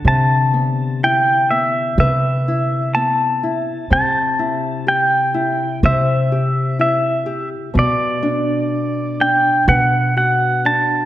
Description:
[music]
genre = acoustic folk-pop ballad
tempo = 62 BPM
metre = 4/4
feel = straight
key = unclear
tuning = A4 = 442 Hz
[part]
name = pedal steel guitar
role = melody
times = 0.0-11.1 s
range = D5 to A5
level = -17 LUFS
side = equal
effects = none
[part]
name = nylon-string guitar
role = accompaniment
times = 0.0-11.1 s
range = B2 to C5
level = -22 LUFS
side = left 2 dB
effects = none
[part]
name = upright bass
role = bass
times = 0.0-11.1 s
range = B2 to C3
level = -20 LUFS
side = equal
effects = none
[sound]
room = wet concert hall reverb, RT60 1.9 s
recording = dark, warm production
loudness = -15 LUFS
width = side -13 dB against mid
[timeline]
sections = 0.0-11.1 A section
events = none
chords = 0.0 Cmaj7; 3.9 Am7/C; 7.8 Bm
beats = | 0.04 1.00 1.97 2.93 | 3.90 4.86 5.83 6.79 | 7.75 8.71 9.68 10.64

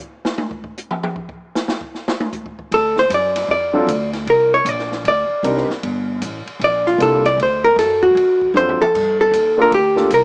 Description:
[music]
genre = jazz, small-group swing and bop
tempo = 154 BPM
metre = 4/4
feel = swing 64% on 8ths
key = G minor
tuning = A4 = 439 Hz
[part]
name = open jazz drum kit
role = drums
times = 0.2-10.2 s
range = crash cymbal, hi-hat, kick drum, ride cymbal, snare drum, toms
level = -29 LUFS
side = equal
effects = cassette tape
[part]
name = vintage hollow-body jazz guitar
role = melody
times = 2.7-10.2 s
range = F4 to D5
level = -17 LUFS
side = equal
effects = cassette tape
[part]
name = upright bass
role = bass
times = 2.7-10.2 s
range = G1 to G2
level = -28 LUFS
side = equal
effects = none
[part]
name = warm concert grand piano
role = accompaniment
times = 3.7-10.1 s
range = F#3 to Bb4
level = -22 LUFS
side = equal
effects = none
[sound]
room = light reverb, small room ambience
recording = home recording on cassette, small speaker sound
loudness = -17 LUFS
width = mono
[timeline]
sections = 0.0-8.9 A section; 8.9-10.2 B section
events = hollow-body jazz guitar solo 0.0-8.9; drum solo 0.0-2.7; drum fill 8.6-8.9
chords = 0.0 N.C.; 2.7 D(#9); 4.3 Cm9; 5.8 Gm9; 7.4 D7#9; 8.9 Gm9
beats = 0.38 0.77 | 1.16 1.54 1.93 2.32 | 2.71 3.10 3.49 3.88 | 4.27 4.66 5.05 5.44 | 5.83 6.22 6.61 6.99 | 7.38 7.77 8.16 8.55 | 8.94 9.33 9.72 10.11

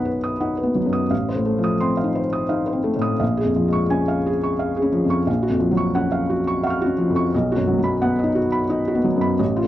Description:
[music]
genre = neoclassical minimalist piano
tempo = 87 BPM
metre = 3/4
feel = rubato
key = unclear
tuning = A4 = 440 Hz
[part]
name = felt-muted upright piano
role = solo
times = 0.0-9.7 s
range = A1 to F6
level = -18 LUFS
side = equal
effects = none
[sound]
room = light reverb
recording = dry, close 1970s-style studio recording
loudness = -18 LUFS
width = side -13 dB against mid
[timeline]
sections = 0.0-9.7 A section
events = none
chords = 0.0 B; 1.1 F7/A; 3.2 Bbm7; 5.3 Gbmaj7/Bb; 7.3 B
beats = 0.41 | 1.11 1.81 2.51 | 3.21 3.91 4.60 | 5.28 5.96 6.65 | 7.33 8.01 8.70 | 9.40

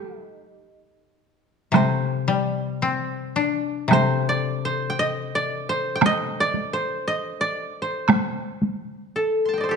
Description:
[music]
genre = japanese traditional, Japanese chamber music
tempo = 57 BPM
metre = 2/4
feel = uneven beats, rubato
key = C kumoi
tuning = A4 = 440 Hz
[part]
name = koto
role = melody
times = 0.0-9.8 s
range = A3 to C6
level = -24 LUFS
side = right 1 dB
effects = none
[part]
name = koto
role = accompaniment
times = 1.7-7.0 s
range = C3 to D4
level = -24 LUFS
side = left 6 dB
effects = none
[part]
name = taiko ensemble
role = percussion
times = 1.7-8.9 s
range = none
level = -21 LUFS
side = right 2 dB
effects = none
[sound]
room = moderate recital hall reverb, RT60 1.5 s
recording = dark, warm production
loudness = -21 LUFS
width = side -5 dB against mid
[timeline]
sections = 0.0-9.8 A section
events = none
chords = none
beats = 0.61 | 1.74 2.84 | 3.91 4.97 | 6.02 7.06 | 8.09 9.17

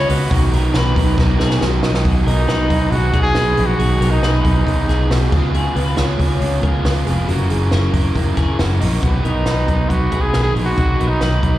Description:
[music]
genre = jangly indie pop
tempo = 138 BPM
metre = 4/4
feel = straight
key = B lydian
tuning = A4 = 442 Hz
[part]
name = warm trumpet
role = melody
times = 0.0-5.3, 9.3-11.6 s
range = D#4 to G#4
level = -21 LUFS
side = equal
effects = slapback echo, analog delay
[part]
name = raw garage guitar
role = accompaniment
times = 0.0-11.6 s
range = B2 to B4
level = -22 LUFS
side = right 3 dB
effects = overdrive, slapback echo
[part]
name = string machine, full ensemble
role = sustained chords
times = 0.0-2.0 s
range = C#3 to E#4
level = -29 LUFS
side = left 1 dB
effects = none
[part]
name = twelve-string electric guitar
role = arpeggios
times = 0.0-11.6 s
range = D#4 to C#5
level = -27 LUFS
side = left 5 dB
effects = wide subtle chorus, slapback echo, analog delay
[part]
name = vintage muted fingered electric bass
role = bass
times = 0.0-11.6 s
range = E#1 to B2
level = -17 LUFS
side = equal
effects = none
[part]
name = compact cocktail drum kit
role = drums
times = 0.1-11.5 s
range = crash cymbal, hi-hat, kick drum, snare drum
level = -22 LUFS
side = equal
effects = none
[sound]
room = small room ambience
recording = live gig heard through the venue's PA, recital hall reverb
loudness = -14 LUFS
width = side -14 dB against mid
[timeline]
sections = 0.0-2.0 A section; 2.0-9.0 B section; 9.0-11.6 C section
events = drum fill 1.2-2.0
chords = 0.3 Bmaj7; 2.0 B6; 5.3 C#7; 7.3 F#7; 9.0 B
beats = | 0.31 0.74 1.18 1.61 | 2.05 2.48 2.92 3.36 | 3.79 4.23 4.67 5.10 | 5.54 5.97 6.41 6.85 | 7.28 7.72 8.15 8.59 | 9.03 9.46 9.90 10.34 | 10.77 11.21

